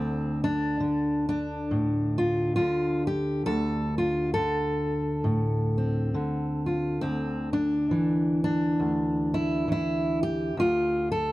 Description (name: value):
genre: folk, solo fingerstyle acoustic guitar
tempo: 68 BPM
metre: 4/4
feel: swing 58% on 8ths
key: D minor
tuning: A4 = 440 Hz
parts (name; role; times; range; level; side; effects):
- fingerpicked steel-string acoustic guitar; solo; 0.0-11.3 s; D2 to A4; -24 LUFS; equal; none
room: small room ambience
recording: dry, close 1970s-style studio recording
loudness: -24 LUFS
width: side -17 dB against mid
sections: 0.0-11.3 A section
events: none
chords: 0.0 Dm7; 7.0 D7sus2; 10.6 N.C.